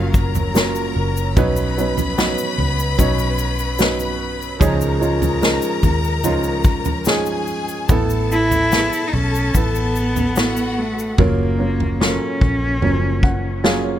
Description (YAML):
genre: pop ballad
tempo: 73 BPM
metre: 4/4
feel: straight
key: unclear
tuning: A4 = 440 Hz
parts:
  - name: warm cello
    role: melody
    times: 0.0-0.9, 8.3-13.6 s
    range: Gb3 to E4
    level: -22 LUFS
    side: equal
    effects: none
  - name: rich studio violin section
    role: second line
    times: 0.0-11.2 s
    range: F4 to Cb6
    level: -26 LUFS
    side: left 4 dB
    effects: none
  - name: dark upright piano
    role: accompaniment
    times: 0.0-14.0 s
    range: A2 to Gb5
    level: -22 LUFS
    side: right 2 dB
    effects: none
  - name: vintage muted fingered electric bass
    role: bass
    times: 0.0-14.0 s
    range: Gb1 to Eb2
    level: -22 LUFS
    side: equal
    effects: none
  - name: unplugged drum kit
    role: drums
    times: 0.1-13.8 s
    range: kick drum, snare drum, toms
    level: -19 LUFS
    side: equal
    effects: none
  - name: tube shaker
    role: percussion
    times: 0.1-11.2 s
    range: none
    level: -32 LUFS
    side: left 8 dB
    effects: none
room: studio ambience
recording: none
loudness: -16 LUFS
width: side -11 dB against mid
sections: 0.0-14.0 A section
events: upright piano fill 12.8-14.0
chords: 0.0 Gbmaj7; 1.4 Cbadd9; 4.6 Dbadd9; 7.9 Asus2; 11.2 Gbmaj7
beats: 0.56 | 1.37 2.18 2.99 3.80 | 4.61 5.42 6.24 7.07 | 7.90 8.72 9.55 10.37 | 11.19 12.01 12.82 13.64